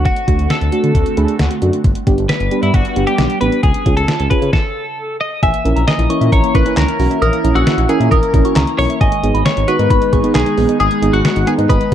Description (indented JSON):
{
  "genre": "synth-pop",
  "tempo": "134 BPM",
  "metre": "4/4",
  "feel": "straight",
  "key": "unclear",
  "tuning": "A4 = 438 Hz",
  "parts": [
    { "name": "twelve-string electric guitar", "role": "melody", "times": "0.0-11.9 s", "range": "E4 to E5", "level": "-19 LUFS", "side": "left 2 dB", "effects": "analog chorus" },
    { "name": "mellow FM electric piano", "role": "accompaniment", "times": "0.0-11.9 s", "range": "A3 to B5", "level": "-19 LUFS", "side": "right 2 dB", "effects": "chorus" },
    { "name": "phased analog pad", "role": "sustained chords", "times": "0.0-11.9 s", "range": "C#3 to G#5", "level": "-22 LUFS", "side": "right 2 dB", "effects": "phaser, chorus" },
    { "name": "smooth synth bass", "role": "bass", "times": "0.0-11.9 s", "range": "G1 to D3", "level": "-17 LUFS", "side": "equal", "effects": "none" },
    { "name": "detuned 8-bit digital drum machine", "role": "drums", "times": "0.1-11.9 s", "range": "handclaps, hi-hat, kick drum, snare drum", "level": "-16 LUFS", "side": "equal", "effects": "overdrive" },
    { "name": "soft synth bell", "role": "second line", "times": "5.4-11.8 s", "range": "G#5 to F#6", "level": "-22 LUFS", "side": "left 1 dB", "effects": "chorus, phaser, digital delay" },
    { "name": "warbly dusty pluck", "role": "arpeggios", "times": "5.4-11.9 s", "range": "D#3 to E5", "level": "-24 LUFS", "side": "left 5 dB", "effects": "chorus" }
  ],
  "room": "light reverb, digital ambience",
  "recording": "dark, warm production",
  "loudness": "-12 LUFS",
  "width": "side -10 dB against mid",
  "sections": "0.0-5.4 A section; 5.4-11.9 B section",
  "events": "FM electric piano fill 0.9-1.8; stop 4.5-5.4",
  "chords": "0.0 D7; 1.8 G; 3.6 C#; 4.5 N.C.; 5.4 A#dim; 9.0 G#m"
}